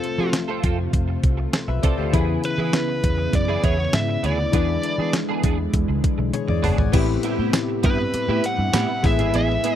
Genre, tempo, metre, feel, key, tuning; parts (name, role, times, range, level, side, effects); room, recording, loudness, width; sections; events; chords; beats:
1980s-style pop; 100 BPM; 4/4; straight; A4 = 440 Hz
bluesy overdriven lead guitar; melody; 0.0-9.8 s; A4 to F#5; -26 LUFS; equal; distortion, tape echo
chorused retro synth keys; accompaniment; 0.0-9.8 s; A2 to G#5; -26 LUFS; left 8 dB
string machine, cellos; sustained chords; 0.0-9.8 s; C3 to B5; -30 LUFS; right 1 dB; phaser, ensemble chorus
twelve-string electric guitar; riff; 0.0-9.8 s; B3 to A4; -28 LUFS; right 8 dB; ensemble chorus
clean 12-bit digital drum machine; drums; 0.0-9.8 s; crash cymbal, hi-hat, kick drum, snare drum, tambourine, toms; -21 LUFS; equal
vintage muted fingered electric bass; bass; 0.2-9.6 s; F#1 to F3; -24 LUFS; equal
overdriven electric guitar; accompaniment; 6.9-9.8 s; C3 to E4; -33 LUFS; right 15 dB; lush chorus
little or no reverb; dry, close 1970s-style studio recording; -19 LUFS; side -10 dB against mid
0.0-6.9 A section; 6.9-9.8 B section
drum fill 6.3-6.9
0.0 F; 2.1 C#m7; 4.5 E7; 6.9 Cmaj7/A; 9.0 E
0.34 0.94 1.54 | 2.14 2.74 3.34 3.94 | 4.54 5.14 5.74 6.34 | 6.94 7.54 8.14 8.74 | 9.34